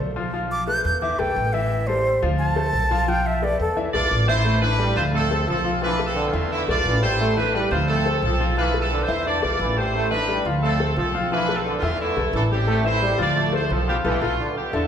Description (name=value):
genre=latin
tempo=175 BPM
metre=4/4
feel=straight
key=A minor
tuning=A4 = 440 Hz
part: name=clear grand piano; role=accompaniment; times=0.0-14.8 s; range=E3 to F5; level=-26 LUFS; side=left 2 dB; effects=none
part: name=upright bass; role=bass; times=0.0-14.9 s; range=A1 to E2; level=-25 LUFS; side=equal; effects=none
part: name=breathy bright concert flute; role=melody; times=0.5-3.8 s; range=A4 to G6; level=-23 LUFS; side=equal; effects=none
part: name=bright horn section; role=melody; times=3.9-14.9 s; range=A3 to D5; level=-24 LUFS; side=right 1 dB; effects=none
part: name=clear trombone section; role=second line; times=4.4-14.9 s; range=D3 to A3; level=-26 LUFS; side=right 2 dB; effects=none
room=wet recital hall reverb, RT60 1.5 s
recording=recorded in a church or concert hall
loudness=-19 LUFS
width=side -8 dB against mid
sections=0.0-4.5 A section; 4.5-14.9 B section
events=flute solo 0.0-4.5; band accent 14.0-14.9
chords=0.3 G13/B; 1.0 Esus4; 1.7 Am7; 2.4 Dm7; 3.1 G13/B; 3.8 E7sus4; 4.5 A5; 5.1 Dm7; 5.8 Bm7b5; 6.5 E7sus4; 7.2 A5; 7.9 Dm7; 8.6 Bm7b5; 9.3 E7sus4; 9.9 A5; 10.6 Dm7; 11.3 Bm7b5; 12.0 E7sus4; 12.7 Am7; 13.4 Dm7; 14.0 Bm7b5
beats=| 0.33 0.67 1.02 1.36 | 1.70 2.05 2.39 2.73 | 3.08 3.42 3.77 4.11 | 4.45 4.80 5.14 5.48 | 5.83 6.17 6.51 6.86 | 7.20 7.54 7.89 8.23 | 8.57 8.91 9.26 9.60 | 9.94 10.28 10.62 10.97 | 11.31 11.65 11.99 12.34 | 12.68 13.02 13.36 13.70 | 14.04 14.38 14.72